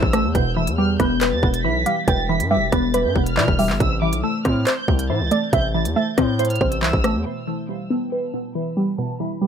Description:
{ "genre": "hip hop, drill", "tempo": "139 BPM", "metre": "4/4", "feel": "half-time", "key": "E phrygian", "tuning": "A4 = 439 Hz", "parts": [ { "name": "clear studio violin section", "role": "melody", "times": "0.0-9.5 s", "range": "E5 to B6", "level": "-28 LUFS", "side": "right 2 dB", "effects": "low-pass filter, tape echo" }, { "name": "soft round pluck", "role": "second line", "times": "0.0-7.2 s", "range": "B4 to G5", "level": "-26 LUFS", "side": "right 3 dB", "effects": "chorus, tape echo" }, { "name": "glassy wavetable pluck", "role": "accompaniment", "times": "0.0-9.5 s", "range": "B2 to C5", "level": "-22 LUFS", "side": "equal", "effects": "chorus, low-pass filter, tape echo" }, { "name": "distorted 808-style bass", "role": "bass", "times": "0.0-7.3 s", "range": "E1 to B2", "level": "-23 LUFS", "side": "equal", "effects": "distortion" }, { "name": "drill drum kit", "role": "drums", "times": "0.0-7.1 s", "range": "handclaps, hi-hat, kick drum, rim click", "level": "-21 LUFS", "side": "equal", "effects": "none" } ], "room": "little or no reverb", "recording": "echo-heavy mix", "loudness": "-18 LUFS", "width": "side -8 dB against mid", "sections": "0.0-7.3 A section; 7.3-9.5 B section", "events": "filter sweep 7.3-9.5", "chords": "0.3 Em; 3.8 Am; 7.3 Em", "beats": "| 0.35 0.78 1.21 1.65 | 2.08 2.51 2.94 3.37 | 3.80 4.24 4.67 5.10 | 5.53 5.96 6.39 6.83 | 7.26 7.69 8.12 8.55 | 8.98 9.41" }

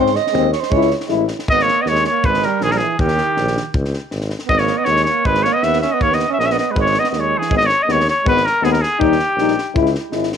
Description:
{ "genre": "balkan folk, Balkan brass band", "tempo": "159 BPM", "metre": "2/4", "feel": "swing 54% on 16ths", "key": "G# harmonic minor", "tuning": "A4 = 441 Hz", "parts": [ { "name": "mellow alto saxophone", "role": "second line", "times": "0.0-7.5 s", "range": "D#3 to D#5", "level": "-21 LUFS", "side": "right 12 dB", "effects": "none" }, { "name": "mellow French horn", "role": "accompaniment", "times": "0.0-1.2, 7.5-10.3 s", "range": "B3 to E4", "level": "-19 LUFS", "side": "left 13 dB", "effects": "none" }, { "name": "warm euphonium", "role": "accompaniment", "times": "0.0-1.2, 7.5-10.3 s", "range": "G3 to G#3", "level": "-26 LUFS", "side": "right 12 dB", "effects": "none" }, { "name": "warm tuba", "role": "bass", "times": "0.0-10.3 s", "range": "G#1 to G#2", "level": "-22 LUFS", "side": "left 1 dB", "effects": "none" }, { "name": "compact cocktail drum kit", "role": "percussion", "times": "0.1-10.4 s", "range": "kick drum, snare drum", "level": "-24 LUFS", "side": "left 1 dB", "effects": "none" }, { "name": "warm trumpet", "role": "melody", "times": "1.5-9.8 s", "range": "G4 to E5", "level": "-16 LUFS", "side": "left 1 dB", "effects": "none" } ], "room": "light reverb", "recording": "1960s-style stereo with parts hard left and right", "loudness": "-14 LUFS", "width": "side -8 dB against mid", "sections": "0.0-1.5 A section; 1.5-7.5 B section; 7.5-10.4 B section", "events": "alto saxophone solo 0.0-1.5", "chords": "0.0 G#; 0.7 C#m; 1.5 G#5; 3.0 D#; 3.7 C#5; 4.5 G#5; 6.0 D#5; 6.8 G#5; 7.5 G#m; 9.0 D#; 9.8 C#m", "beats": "0.34 | 0.72 1.10 | 1.48 1.86 | 2.23 2.61 | 2.99 3.37 | 3.75 4.12 | 4.50 4.88 | 5.25 5.63 | 6.01 6.38 | 6.76 7.13 | 7.51 7.89 | 8.26 8.63 | 9.01 9.38 | 9.76 10.13" }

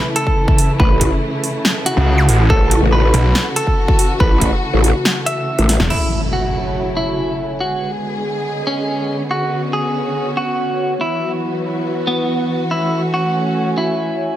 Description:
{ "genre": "heavy wobble dubstep", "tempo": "141 BPM", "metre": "4/4", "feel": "half-time", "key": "F# minor", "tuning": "A4 = 440 Hz", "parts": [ { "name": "clean electric guitar", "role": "melody", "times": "0.0-14.3 s", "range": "B3 to E5", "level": "-21 LUFS", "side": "equal", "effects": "dub echo" }, { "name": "warm symphonic string section", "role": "sustained chords", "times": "0.0-14.4 s", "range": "C#3 to G#4", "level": "-22 LUFS", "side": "equal", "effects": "sidechain pumping" }, { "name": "big-room dance drum kit", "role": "drums", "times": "0.2-6.0 s", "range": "crash cymbal, hi-hat, snare drum", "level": "-19 LUFS", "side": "right 1 dB", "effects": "studio reverb" }, { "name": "electronic kick drum", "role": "drums", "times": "0.3-4.5 s", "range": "none", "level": "-15 LUFS", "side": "equal", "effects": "studio reverb" }, { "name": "growl bass", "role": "bass", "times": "0.8-5.8 s", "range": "A1", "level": "-14 LUFS", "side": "equal", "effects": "chorus, overdrive" }, { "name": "snarling distorted saw bass", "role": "bass", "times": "2.0-5.9 s", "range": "E1 to C#2", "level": "-13 LUFS", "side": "equal", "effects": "distortion, overdrive" }, { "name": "zap and impact", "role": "sound effects", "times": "2.2-2.3, 5.9-7.6 s", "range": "none", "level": "-23 LUFS", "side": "equal", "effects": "none" }, { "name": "airy breathy pad", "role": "texture", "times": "6.3-14.4 s", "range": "B3 to G#5", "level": "-24 LUFS", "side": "equal", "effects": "chorus, sidechain pumping" } ], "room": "light reverb", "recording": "none", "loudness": "-14 LUFS", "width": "side -13 dB against mid", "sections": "0.0-5.9 A section; 5.9-14.4 B section", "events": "drop 0.0-5.9; drum fill 5.7; impact 5.9-7.6", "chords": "0.0 A; 5.9 F#m7; 7.6 G#dim; 9.3 Bmadd9; 11.0 Esus2; 12.7 F#m7", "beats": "0.37 | 0.80 1.22 1.65 2.07 | 2.50 2.92 3.35 3.78 | 4.20 4.63 5.05 5.48 | 5.90 6.33 6.75 7.18 | 7.61 8.03 8.46 8.88 | 9.31 9.73 10.16 10.58 | 11.01 11.44 11.86 12.29 | 12.71 13.14 13.56 13.99" }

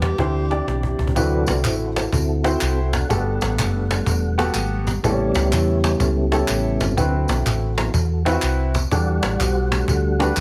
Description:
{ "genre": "uptempo gospel", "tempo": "124 BPM", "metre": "4/4", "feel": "swing 65% on 8ths", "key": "unclear", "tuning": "A4 = 437 Hz", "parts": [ { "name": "clear alto saxophone", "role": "melody", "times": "0.0-1.0 s", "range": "G4", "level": "-30 LUFS", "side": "equal", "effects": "none" }, { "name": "percussive tonewheel organ", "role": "sustained chords", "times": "0.0-10.4 s", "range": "C3 to F#5", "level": "-27 LUFS", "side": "equal", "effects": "slow rotary speaker, chorus vibrato" }, { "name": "hollow-body short-scale fingered electric bass", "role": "bass", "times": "0.0-10.4 s", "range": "E1 to E2", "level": "-24 LUFS", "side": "equal", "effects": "none" }, { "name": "cajon", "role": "drums", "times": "0.0-10.4 s", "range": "none", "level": "-28 LUFS", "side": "equal", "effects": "none" }, { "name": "warm baby grand piano", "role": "accompaniment", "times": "0.2-10.4 s", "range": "G2 to D5", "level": "-27 LUFS", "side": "equal", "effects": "none" }, { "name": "tambourine and handclaps", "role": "percussion", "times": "1.2-10.4 s", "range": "none", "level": "-32 LUFS", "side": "equal", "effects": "none" } ], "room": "light reverb, small room ambience", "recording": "none", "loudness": "-20 LUFS", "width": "mono", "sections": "0.0-1.2 A section; 1.2-10.4 B section", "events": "drum fill 0.2-1.2; tonewheel organ solo 1.2-10.4", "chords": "0.2 D9sus4; 1.2 D13; 3.1 Gmaj9; 5.0 A7; 7.0 D13; 8.9 Em11", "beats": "0.19 0.67 | 1.16 1.64 2.13 2.61 | 3.10 3.58 4.07 4.55 | 5.04 5.52 6.01 6.49 | 6.98 7.46 7.95 8.43 | 8.92 9.40 9.89 10.37" }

